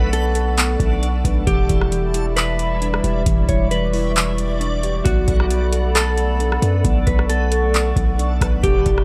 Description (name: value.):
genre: hip hop, atmospheric cloud-rap.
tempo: 134 BPM.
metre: 4/4.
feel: half-time.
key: B minor.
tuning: A4 = 440 Hz.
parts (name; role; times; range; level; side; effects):
mellow electric guitar; melody; 0.0-9.0 s; F#4 to C#5; -26 LUFS; equal; lush chorus, tape echo.
warbly tape-like pad; sustained chords; 0.0-9.0 s; G3 to C#6; -28 LUFS; equal; chorus, built-in reverb, sidechain pumping.
muted felt-like synth keys; arpeggios; 0.0-9.0 s; E3 to B4; -31 LUFS; equal; chorus, tape echo.
long sustained 808-style bass; bass; 0.0-9.0 s; E1 to F#2; -22 LUFS; equal; none.
backwards swelling texture; texture; 0.0-9.0 s; G3 to D5; -34 LUFS; equal; built-in reverb.
booming analog drum machine; drums; 0.1-9.0 s; handclaps, hi-hat, kick drum, rim click; -22 LUFS; equal; none.
room: digital ambience.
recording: none.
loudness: -18 LUFS.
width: mono.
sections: 0.0-1.5 A section; 1.5-9.0 B section.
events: none.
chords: 0.0 Bm7; 1.5 Em7; 5.1 Bm7.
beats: 0.13 0.58 1.02 | 1.47 1.92 2.37 2.81 | 3.26 3.71 4.16 4.61 | 5.05 5.50 5.95 6.40 | 6.84 7.29 7.74 8.19 | 8.64.